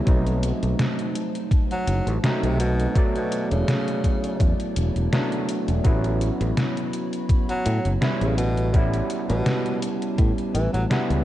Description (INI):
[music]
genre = vaporwave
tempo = 83 BPM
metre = 4/4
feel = swing 54% on 16ths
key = A major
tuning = A4 = 440 Hz
[part]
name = overdriven tine electric piano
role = accompaniment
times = 0.0-11.2 s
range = F#3 to D5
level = -27 LUFS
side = right 1 dB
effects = lush chorus, analog delay
[part]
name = warbly tape-like pad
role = sustained chords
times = 0.0-11.2 s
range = D#4 to B5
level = -36 LUFS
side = left 1 dB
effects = chorus, built-in reverb, vintage 12-bit sampler grit
[part]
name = fingered electric bass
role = bass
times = 0.1-11.2 s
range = E1 to A2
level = -23 LUFS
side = equal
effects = none
[part]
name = detuned 8-bit digital drum machine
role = drums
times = 0.1-11.2 s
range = hi-hat, snare drum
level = -27 LUFS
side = equal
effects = vintage 12-bit sampler grit, gated reverb
[part]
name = electronic kick drum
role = drums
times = 0.1-10.3 s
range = none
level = -20 LUFS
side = equal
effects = vintage 12-bit sampler grit
[part]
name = breathy tenor saxophone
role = melody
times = 1.7-11.0 s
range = B2 to F#3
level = -30 LUFS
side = equal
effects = tape echo
[sound]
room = little or no reverb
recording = cassette tape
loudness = -20 LUFS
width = side -14 dB against mid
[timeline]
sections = 0.0-11.2 A section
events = none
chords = 0.1 B7b9; 3.0 E7sus4; 5.9 A69; 8.4 A7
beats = | 0.07 0.79 1.51 2.24 | 2.96 3.68 4.41 5.13 | 5.85 6.57 7.30 8.02 | 8.74 9.46 10.19 10.91